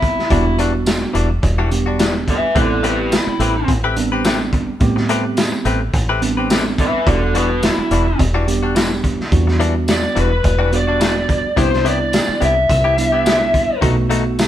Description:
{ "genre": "straight-eighth soul blues", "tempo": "107 BPM", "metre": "4/4", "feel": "swing 54% on 16ths", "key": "E minor", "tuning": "A4 = 440 Hz", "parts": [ { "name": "lead guitar through a small cranked amp", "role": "melody", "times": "0.0-13.8 s", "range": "E4 to E5", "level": "-18 LUFS", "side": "left 1 dB", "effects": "overdrive" }, { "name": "mellow tine electric piano", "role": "accompaniment", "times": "0.0-14.5 s", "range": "G3 to G4", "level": "-22 LUFS", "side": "right 4 dB", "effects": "none" }, { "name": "direct-recorded clean electric guitar", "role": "stabs", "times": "0.0-14.3 s", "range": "B2 to B4", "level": "-22 LUFS", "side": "left 4 dB", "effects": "none" }, { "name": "deep dub fingered electric bass", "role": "bass", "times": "0.0-14.5 s", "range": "E1 to A2", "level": "-20 LUFS", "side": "equal", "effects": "none" }, { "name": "crunchy breakbeat drum kit", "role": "drums", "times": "0.0-14.5 s", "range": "hi-hat, kick drum, snare drum, tambourine", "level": "-19 LUFS", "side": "equal", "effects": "none" } ], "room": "light reverb", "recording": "band playing live in one room", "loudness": "-14 LUFS", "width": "side -11 dB against mid", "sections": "0.0-14.5 A section", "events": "lead electric guitar solo 0.0-14.5", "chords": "0.3 Em9; 2.6 Am9; 7.1 Em9; 11.6 Cmaj7; 13.8 B7", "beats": "| 0.30 0.87 1.43 2.00 | 2.56 3.12 3.69 4.25 | 4.81 5.38 5.94 6.50 | 7.07 7.63 8.19 8.76 | 9.32 9.88 10.44 11.01 | 11.57 12.13 12.69 13.26 | 13.82 14.38" }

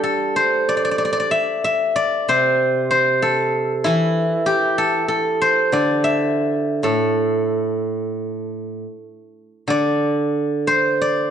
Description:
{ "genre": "chinese traditional, Chinese solo plucked strings", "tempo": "94 BPM", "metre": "4/4", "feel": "rubato", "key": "A yu mode", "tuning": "A4 = 440 Hz", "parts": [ { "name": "steel-string zither", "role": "solo", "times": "0.0-11.3 s", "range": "A2 to E5", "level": "-17 LUFS", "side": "equal", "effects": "none" } ], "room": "moderate recital hall reverb, RT60 1.6 s", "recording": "dark, warm production, nothing above 10.3 kHz", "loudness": "-17 LUFS", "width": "side -8 dB against mid", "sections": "0.0-9.7 A section; 9.7-11.3 B section", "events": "none", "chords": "none", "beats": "0.04 0.69 1.33 | 1.98 2.62 3.24 3.87 | 4.50 5.13 5.75 6.38 | 7.01 7.66 8.32 9.01 | 9.68 10.34 11.00" }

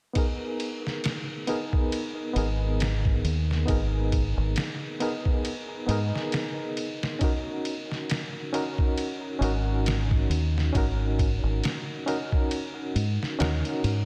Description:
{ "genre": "trip hop", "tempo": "68 BPM", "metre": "4/4", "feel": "swing 56% on 16ths", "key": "G# minor", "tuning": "A4 = 440 Hz", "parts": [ { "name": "overdriven reed electric piano", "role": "accompaniment", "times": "0.1-14.1 s", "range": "B3 to A#4", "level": "-33 LUFS", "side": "equal", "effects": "tremolo, tape echo" }, { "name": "trip hop sampler-style drum kit", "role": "drums", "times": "0.2-14.1 s", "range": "kick drum, ride cymbal, snare drum", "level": "-32 LUFS", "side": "equal", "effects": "studio reverb" }, { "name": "deep dub fingered electric bass", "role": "bass", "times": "2.4-14.1 s", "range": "G#1 to G#2", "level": "-28 LUFS", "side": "equal", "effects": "none" } ], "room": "moderate lush hall reverb, RT60 2.5 s", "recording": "dreamy mix soaked in reverb", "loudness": "-27 LUFS", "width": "mono", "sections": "0.2-14.1 A section", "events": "none", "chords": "0.2 G#madd9; 7.2 D#m7", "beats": "| 0.16 1.04 1.92 2.80 | 3.69 4.57 5.45 6.33 | 7.21 8.10 8.98 9.86 | 10.74 11.63 12.51 13.39" }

